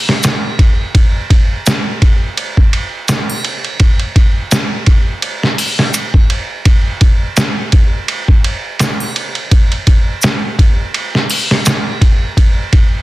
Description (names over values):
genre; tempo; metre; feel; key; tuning
trip hop; 84 BPM; 4/4; swing 56% on 16ths; none; none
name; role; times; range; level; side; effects
trip hop sampler-style drum kit; drums; 0.1-12.9 s; hi-hat, kick drum, ride cymbal, snare drum; -11 LUFS; equal; none
tube shaker and triangle; percussion; 0.2-11.8 s; none; -24 LUFS; right 2 dB; none
room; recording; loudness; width
little or no reverb; dense, heavily limited modern master; -11 LUFS; side -18 dB against mid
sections
0.0-13.0 A section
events
none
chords
none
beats
0.23 | 0.94 1.66 2.37 3.09 | 3.80 4.52 5.23 5.95 | 6.66 7.37 8.09 8.80 | 9.52 10.23 10.95 11.66 | 12.37